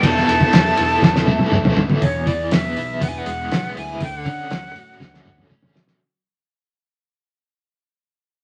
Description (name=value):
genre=psychedelic rock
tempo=121 BPM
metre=4/4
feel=straight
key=E mixolydian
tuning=A4 = 440 Hz
part: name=breathy bright jazz flute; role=melody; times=0.0-5.5 s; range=C#5 to A5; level=-25 LUFS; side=equal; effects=none
part: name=string machine, violas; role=sustained chords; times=0.0-2.0 s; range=B3 to E5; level=-30 LUFS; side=equal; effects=none
part: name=overdriven electric guitar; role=riff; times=0.0-6.0 s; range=E2 to A4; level=-26 LUFS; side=equal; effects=tremolo
part: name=fingered electric bass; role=bass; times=0.0-6.0 s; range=E1 to D3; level=-32 LUFS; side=equal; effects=none
part: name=cloth-damped thuddy drum kit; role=drums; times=0.0-6.0 s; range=hi-hat, kick drum, ride cymbal, snare drum, toms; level=-19 LUFS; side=equal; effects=none
room=moderate studio reverb, RT60 0.5 s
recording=vinyl crackle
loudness=-18 LUFS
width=mono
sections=0.0-2.0 A section; 2.0-6.0 B section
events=drum fill 1.0-2.0, 5.0-6.0; fade-out 2.0-6.0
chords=0.0 Esus4; 2.0 E; 4.0 Dmaj7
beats=| 0.03 0.53 1.02 1.52 | 2.01 2.51 3.00 3.50 | 4.00 4.50 4.99 5.49